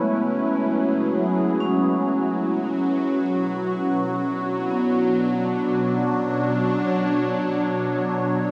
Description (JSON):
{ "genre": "ambient", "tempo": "free time", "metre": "none", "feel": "none", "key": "B dorian", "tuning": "A4 = 439 Hz", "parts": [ { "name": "evolving wavetable pad", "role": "sustained chords", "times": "0.0-8.5 s", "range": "B2 to C#5", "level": "-24 LUFS", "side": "equal", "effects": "phaser, built-in reverb" }, { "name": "vibraphone with medium hard mallets", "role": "arpeggios", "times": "0.0-8.5 s", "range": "G#3 to C#4", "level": "-27 LUFS", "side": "equal", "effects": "tape echo" } ], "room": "wet huge ambient reverb, RT60 8.0 s", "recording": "dreamy mix soaked in reverb", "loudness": "-23 LUFS", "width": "mono", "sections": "0.0-8.5 A section", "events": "none", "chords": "0.0 F#m11; 2.6 Bmadd9" }